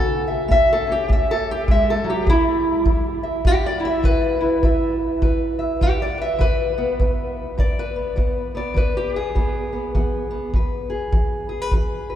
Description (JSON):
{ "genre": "acoustic country blues, solo or duo", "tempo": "102 BPM", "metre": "4/4", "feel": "swing 62% on 8ths", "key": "E mixolydian", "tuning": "A4 = 440 Hz", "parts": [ { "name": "fingerpicked steel-string acoustic guitar", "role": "melody", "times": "0.0-12.2 s", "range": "E3 to E5", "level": "-20 LUFS", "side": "equal", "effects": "none" }, { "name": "kick drum", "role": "drums", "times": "0.5-11.9 s", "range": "none", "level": "-22 LUFS", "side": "equal", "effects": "none" } ], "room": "wet cathedral reverb, RT60 5.4 s", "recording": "recorded in a church or concert hall", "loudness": "-18 LUFS", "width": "side -11 dB against mid", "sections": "0.0-7.0 A section; 7.0-12.2 B section", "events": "steel-string acoustic guitar solo 0.0-7.0", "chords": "0.0 A; 2.3 E5; 7.0 E" }